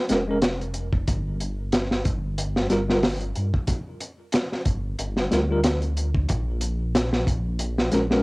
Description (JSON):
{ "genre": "trip hop", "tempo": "92 BPM", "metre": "4/4", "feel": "swing 56% on 16ths", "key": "unclear", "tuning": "A4 = 440 Hz", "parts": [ { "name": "bell-like tine electric piano", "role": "accompaniment", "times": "0.1-8.2 s", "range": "G3 to Bb4", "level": "-25 LUFS", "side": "equal", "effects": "medium stereo tremolo, cassette tape, tape echo" }, { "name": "dark detuned saw bass", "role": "bass", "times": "0.1-8.2 s", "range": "F1 to G2", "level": "-27 LUFS", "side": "equal", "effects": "tube saturation" }, { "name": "crunchy breakbeat drum kit", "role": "drums", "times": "0.1-8.2 s", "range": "hi-hat, kick drum, snare drum", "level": "-24 LUFS", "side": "equal", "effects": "cassette tape" } ], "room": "light reverb", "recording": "home recording on cassette", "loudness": "-22 LUFS", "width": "side -28 dB against mid", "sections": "0.0-8.2 A section", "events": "none", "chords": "0.0 Bbm7; 1.1 G5; 6.3 N.C." }